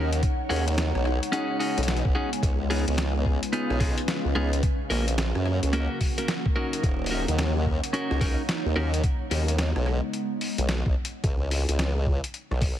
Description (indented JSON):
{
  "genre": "glitch hop",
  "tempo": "109 BPM",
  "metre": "4/4",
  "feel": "swing 63% on 16ths",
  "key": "unclear",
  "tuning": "A4 = 440 Hz",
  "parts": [
    { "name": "warbly tape-like pad", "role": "sustained chords", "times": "0.0-11.2 s", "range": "Db3 to Gb4", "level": "-34 LUFS", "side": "left 1 dB", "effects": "chorus, built-in reverb, phaser, sidechain pumping" },
    { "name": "clean electric guitar", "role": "stabs", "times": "0.0-8.9 s", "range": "Bb3 to Bb4", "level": "-31 LUFS", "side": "equal", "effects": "sidechain pumping, ping-pong delay" },
    { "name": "formant-sweep wobble bass", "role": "bass", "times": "0.0-12.8 s", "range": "Eb1 to Gb2", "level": "-25 LUFS", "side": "equal", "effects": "chorus, tube saturation" },
    { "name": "ethereal airy pad", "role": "texture", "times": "0.0-9.0 s", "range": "Db4 to G#5", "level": "-34 LUFS", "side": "equal", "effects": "ensemble chorus, built-in reverb, sidechain pumping" },
    { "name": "boom bap sampler-style drum kit", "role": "drums", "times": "0.1-12.8 s", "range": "hi-hat, rim click, snare drum", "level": "-32 LUFS", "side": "left 1 dB", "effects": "none" },
    { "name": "electronic kick drum", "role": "drums", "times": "0.2-12.8 s", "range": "none", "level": "-26 LUFS", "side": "equal", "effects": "none" }
  ],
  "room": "light reverb, digital ambience",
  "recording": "heavily compressed radio sound",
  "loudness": "-23 LUFS",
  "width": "side -11 dB against mid",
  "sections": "0.0-12.8 A section",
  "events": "none",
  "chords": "0.2 B69; 2.4 Db7; 4.6 Gb; 6.8 Ebm7; 9.0 B69; 11.2 Bsus2",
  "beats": "| 0.23 0.78 1.33 1.88 | 2.43 2.98 3.53 4.08 | 4.63 5.18 5.73 6.28 | 6.83 7.38 7.93 8.48 | 9.03 9.59 10.13 10.69 | 11.24 11.79 12.34"
}